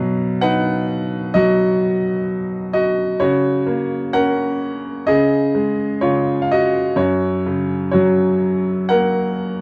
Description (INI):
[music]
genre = classical, lyrical solo piano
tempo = 64 BPM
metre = 4/4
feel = rubato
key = F# major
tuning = A4 = 444 Hz
[part]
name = bright upright piano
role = solo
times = 0.0-9.6 s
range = F#2 to F#5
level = -18 LUFS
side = equal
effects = none
[sound]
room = moderate studio reverb, RT60 0.7 s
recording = dark, warm production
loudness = -18 LUFS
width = mono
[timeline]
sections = 0.0-9.6 A section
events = none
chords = 0.0 B; 3.2 F#/C#; 5.1 C#; 7.0 F#